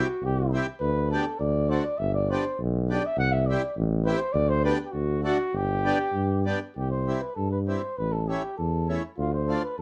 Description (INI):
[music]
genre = alpine folk, alpine dance band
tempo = 101 BPM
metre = 2/4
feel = rubato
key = G major, C major from 6.8 s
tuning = A4 = 440 Hz
[part]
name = dark trumpet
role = melody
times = 0.0-9.8 s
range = E4 to F#5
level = -31 LUFS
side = equal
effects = none
[part]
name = accordion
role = accompaniment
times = 0.0-9.6 s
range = G3 to G4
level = -32 LUFS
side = equal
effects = none
[part]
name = clear tuba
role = bass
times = 0.2-9.8 s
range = G1 to G2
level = -29 LUFS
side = equal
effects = none
[sound]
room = light reverb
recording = dark, warm production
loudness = -27 LUFS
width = mono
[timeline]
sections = 0.0-6.8 A section; 6.8-9.8 B section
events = none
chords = 0.0 C; 0.8 G/D; 1.4 D; 2.0 G; 3.2 C; 4.4 G/D; 4.9 D; 5.5 G; 6.8 C; 8.0 A; 9.2 Dm